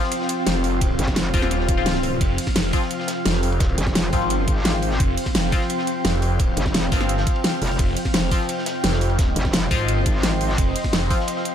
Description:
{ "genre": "dark technical drum and bass", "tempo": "172 BPM", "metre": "4/4", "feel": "straight", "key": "unclear", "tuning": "A4 = 440 Hz", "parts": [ { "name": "deep dark ambient pad", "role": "sustained chords", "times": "0.0-11.5 s", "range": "F3 to G5", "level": "-28 LUFS", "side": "left 1 dB", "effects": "chorus, built-in reverb, sidechain pumping" }, { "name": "band-passed chord stab", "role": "stabs", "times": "0.0-11.2 s", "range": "F3 to F4", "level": "-28 LUFS", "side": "left 4 dB", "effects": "phaser, digital delay" }, { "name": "crunchy breakbeat drum kit", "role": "drums", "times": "0.0-11.5 s", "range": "hi-hat, ride cymbal, snare drum", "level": "-35 LUFS", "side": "equal", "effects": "high-pass filter on cymbals, high-pass filter on hats, high-pass filter on snare, high-pass filter on room" }, { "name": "granular cloud pad", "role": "texture", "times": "0.0-11.5 s", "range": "C4 to F6", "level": "-29 LUFS", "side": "equal", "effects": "built-in reverb, sidechain pumping" }, { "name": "dubstep drum kit", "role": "drums", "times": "0.1-11.5 s", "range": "hi-hat, snare drum", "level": "-24 LUFS", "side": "equal", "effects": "overdrive" }, { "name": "phased detuned saw bass", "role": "bass", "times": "0.5-11.1 s", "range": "Eb1 to Ab1", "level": "-23 LUFS", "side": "equal", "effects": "phaser, overdrive" }, { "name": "electronic kick drum", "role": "drums", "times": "0.8-11.2 s", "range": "none", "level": "-22 LUFS", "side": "equal", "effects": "overdrive" }, { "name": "metallic wobble bass", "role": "bass", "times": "1.0-1.3, 3.8-10.6 s", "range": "F1 to Ab1", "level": "-23 LUFS", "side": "equal", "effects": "distortion, chorus" }, { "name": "swell", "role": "sound effects", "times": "1.6-2.2 s", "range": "none", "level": "-31 LUFS", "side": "left 6 dB", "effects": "none" } ], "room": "light reverb", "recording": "none", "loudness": "-18 LUFS", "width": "side -9 dB against mid", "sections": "0.0-11.5 A section", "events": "swell 1.6-2.2; kick drops out 1.9-2.2", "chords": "0.0 F5", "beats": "0.12 0.47 | 0.81 1.16 1.51 1.86 | 2.21 2.56 2.91 3.26 | 3.60 3.95 4.30 4.65 | 5.00 5.35 5.70 6.05 | 6.40 6.74 7.09 7.44 | 7.79 8.14 8.49 8.84 | 9.19 9.54 9.88 10.23 | 10.58 10.93 11.28" }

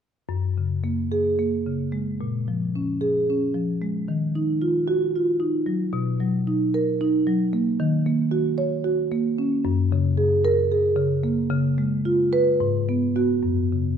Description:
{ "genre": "classical, contemporary piece for solo marimba", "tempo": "224 BPM (eighths)", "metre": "7/8", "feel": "straight", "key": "F# major", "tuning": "A4 = 440 Hz", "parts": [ { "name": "marimba with soft mallets", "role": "solo", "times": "0.3-14.0 s", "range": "F#2 to C#5", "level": "-20 LUFS", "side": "equal", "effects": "none" } ], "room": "moderate recital hall reverb, RT60 1.4 s", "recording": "dark, warm production", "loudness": "-20 LUFS", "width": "side -8 dB against mid", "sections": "0.3-14.0 A section", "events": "none", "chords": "0.3 F#add9; 2.2 A#m7; 4.1 D#madd9; 5.9 Bmaj7; 7.8 D#m7; 9.7 F#add9; 11.5 C#7; 12.6 G#m7; 13.4 F#5", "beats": "| 0.30 0.57 0.84 1.12 1.39 1.66 1.92 | 2.19 2.46 2.74 3.01 3.27 3.54 3.81 | 4.08 4.35 4.62 4.88 5.14 5.41 5.67 | 5.94 6.21 6.47 6.74 7.00 7.27 7.53 | 7.79 8.06 8.32 8.59 8.85 9.12 9.38 | 9.65 9.92 10.18 10.45 10.71 10.98 11.25 | 11.52 11.79 12.05 12.32 12.60 12.87 13.15 | 13.43 13.72" }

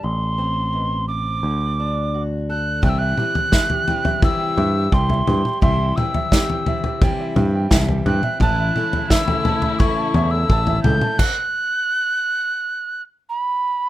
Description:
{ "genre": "indie folk with a building arrangement", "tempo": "86 BPM", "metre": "4/4", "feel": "straight", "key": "unclear", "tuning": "A4 = 441 Hz", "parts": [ { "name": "mellow hollow mid whistle", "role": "melody", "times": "0.0-13.9 s", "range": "B5 to G6", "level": "-22 LUFS", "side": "right 1 dB", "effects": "none" }, { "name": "fingerpicked steel-string acoustic guitar", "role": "accompaniment", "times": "0.0-2.8 s", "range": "A2 to A4", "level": "-30 LUFS", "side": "left 2 dB", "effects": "none" }, { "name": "picked electric bass", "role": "bass", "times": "0.0-11.0 s", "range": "A1 to G2", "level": "-21 LUFS", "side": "equal", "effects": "none" }, { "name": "picked steel-string acoustic guitar", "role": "accompaniment", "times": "2.8-11.2 s", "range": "A2 to E4", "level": "-28 LUFS", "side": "left 4 dB", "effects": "none" }, { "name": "warm upright piano", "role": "arpeggios", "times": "2.8-11.2 s", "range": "G4 to A5", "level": "-26 LUFS", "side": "right 4 dB", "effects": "none" }, { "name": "unplugged drum kit", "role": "drums", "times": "2.8-11.4 s", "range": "crash cymbal, kick drum, snare drum, toms", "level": "-19 LUFS", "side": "equal", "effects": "none" }, { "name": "warm chamber string section", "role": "sustained chords", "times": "8.4-11.2 s", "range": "C#3 to E4", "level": "-28 LUFS", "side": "left 1 dB", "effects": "none" } ], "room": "little or no reverb", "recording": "rough home demo mix", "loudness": "-17 LUFS", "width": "side -14 dB against mid", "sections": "0.0-2.8 A section; 2.8-13.9 B section", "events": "stop 11.2-13.9", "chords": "0.0 Amadd9; 1.4 D; 2.8 C; 8.4 A; 11.2 N.C.", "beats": "| 0.04 0.74 1.44 2.14 | 2.83 3.53 4.23 4.93 | 5.62 6.32 7.02 7.71 | 8.41 9.11 9.80 10.50 | 11.19 11.89 12.59 13.28" }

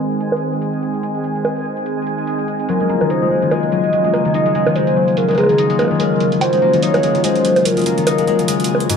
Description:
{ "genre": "IDM", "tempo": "145 BPM", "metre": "4/4", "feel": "swing 56% on 16ths", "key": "unclear", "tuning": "A4 = 439 Hz", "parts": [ { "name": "phased analog pad", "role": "sustained chords", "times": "0.0-9.0 s", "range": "Db3 to Ab4", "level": "-21 LUFS", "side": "right 2 dB", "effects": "phaser, chorus" }, { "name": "bubbling stepped-filter texture", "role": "texture", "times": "0.0-9.0 s", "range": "Ab3 to Ab5", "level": "-28 LUFS", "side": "right 1 dB", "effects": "chorus, built-in reverb" }, { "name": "electronic hi-hat and bongos", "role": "drums", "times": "0.1-9.0 s", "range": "none", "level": "-21 LUFS", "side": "right 4 dB", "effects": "none" }, { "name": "warbly nostalgic lead", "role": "melody", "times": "2.7-8.9 s", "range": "Ab4 to Eb5", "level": "-17 LUFS", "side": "equal", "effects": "lush chorus, digital delay" }, { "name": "concert harp", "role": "arpeggios", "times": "2.7-9.0 s", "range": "Ab2 to Ab4", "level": "-18 LUFS", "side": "left 6 dB", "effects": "digital delay" } ], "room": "wet plate reverb, RT60 1.6 s", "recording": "bright 1980s-style digital production, low-pass filter", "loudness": "-14 LUFS", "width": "side -6 dB against mid", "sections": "0.0-9.0 A section", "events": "filter sweep on analog synth pad 0.0-9.0; filter sweep 0.0-9.0", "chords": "0.0 Ab; 2.7 Gbmaj7", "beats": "0.20 0.62 | 1.03 1.45 1.86 2.27 | 2.69 3.10 3.52 3.93 | 4.34 4.76 5.17 5.58 | 6.00 6.41 6.83 7.24 | 7.65 8.07 8.48 8.89" }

